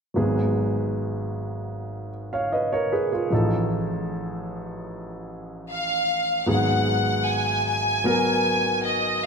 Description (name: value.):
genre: pop.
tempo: 76 BPM.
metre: 4/4.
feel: straight.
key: G# dorian.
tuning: A4 = 440 Hz.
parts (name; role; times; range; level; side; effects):
warm grand piano; accompaniment; 0.1-9.3 s; G#1 to E#5; -24 LUFS; right 1 dB; none.
clear studio violin section; melody; 5.7-9.2 s; D#5 to G#5; -22 LUFS; left 1 dB; none.
room: wet concert hall reverb, RT60 1.8 s.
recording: none.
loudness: -21 LUFS.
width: side -5 dB against mid.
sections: 0.2-6.5 A section; 6.5-9.3 B section.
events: none.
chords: 0.2 G#m7; 3.3 F7/A; 6.5 G#m7.